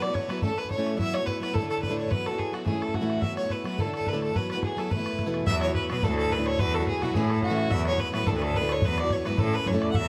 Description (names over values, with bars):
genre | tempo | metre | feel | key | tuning
celtic folk, Celtic reel | 214 BPM | 4/4 | swing 54% on 8ths | unclear | A4 = 441 Hz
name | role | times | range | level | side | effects
rich fiddle | melody | 0.0-10.1 s | F#4 to F#5 | -32 LUFS | equal | none
picked plugged-in swing-style acoustic guitar | accompaniment | 0.0-10.1 s | D2 to A4 | -32 LUFS | equal | none
bodhran | percussion | 0.0-10.0 s | none | -33 LUFS | equal | none
bright cello | bass | 5.5-10.1 s | D2 to B2 | -32 LUFS | equal | none
room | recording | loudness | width
moderate huge ambient reverb, RT60 7.6 s | none | -27 LUFS | mono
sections
0.0-5.5 A section; 5.5-10.1 A section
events
none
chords
0.4 A; 1.0 Esus2; 1.5 Dsus2; 2.1 Esus2; 2.7 A; 3.2 Esus2; 3.8 Dsus2; 4.3 Esus2; 4.9 Esus4; 5.5 Esus2; 6.0 Dsus2; 6.6 Esus2; 7.1 A; 7.7 Esus2; 8.3 Dsus2; 8.8 Esus2; 9.4 A